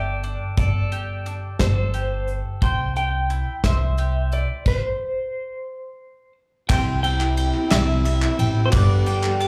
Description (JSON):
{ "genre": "indie folk with a building arrangement", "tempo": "59 BPM (dotted quarters)", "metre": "6/8", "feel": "straight", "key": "C major", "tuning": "A4 = 437 Hz", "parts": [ { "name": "electric guitar through a small old amp", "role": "melody", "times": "0.0-9.5 s", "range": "C5 to G5", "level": "-30 LUFS", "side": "equal", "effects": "tremolo, plate reverb, slapback echo" }, { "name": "fingerpicked steel-string acoustic guitar", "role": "accompaniment", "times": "0.0-0.6 s", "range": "G3", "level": "-58 LUFS", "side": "equal", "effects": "none" }, { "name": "bowl-back mandolin", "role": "arpeggios", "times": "0.0-9.5 s", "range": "D4 to A5", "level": "-34 LUFS", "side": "equal", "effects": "plate reverb, slapback echo" }, { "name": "upright bass", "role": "bass", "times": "0.0-9.5 s", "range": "G1 to C2", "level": "-24 LUFS", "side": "equal", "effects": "none" }, { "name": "soft brush drum kit", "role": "drums", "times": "0.2-9.5 s", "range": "crash cymbal, hi-hat, kick drum, ride cymbal, snare drum", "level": "-26 LUFS", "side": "equal", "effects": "none" }, { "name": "mellow French horn", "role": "second line", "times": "6.7-9.5 s", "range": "E4 to G4", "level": "-30 LUFS", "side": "equal", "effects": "plate reverb, slapback echo" }, { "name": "clear upright piano", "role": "accompaniment", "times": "6.7-9.5 s", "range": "G1 to E5", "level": "-38 LUFS", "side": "equal", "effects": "none" }, { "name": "picked steel-string acoustic guitar", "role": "accompaniment", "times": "6.7-9.5 s", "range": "G2 to A4", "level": "-32 LUFS", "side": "equal", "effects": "plate reverb, slapback echo" }, { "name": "group handclap", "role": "percussion", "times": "6.7-9.4 s", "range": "none", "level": "-33 LUFS", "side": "equal", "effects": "slapback echo" } ], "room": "light reverb", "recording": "live gig heard through the venue's PA, club reverb", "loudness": "-22 LUFS", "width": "mono", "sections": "0.0-6.7 A section; 6.7-9.5 B section", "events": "stop 4.7-6.7", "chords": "0.0 Gsus2; 2.6 C; 8.7 Gadd9", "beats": "| 0.57 1.59 | 2.62 3.63 | 4.66 5.67 | 6.69 7.71 | 8.73" }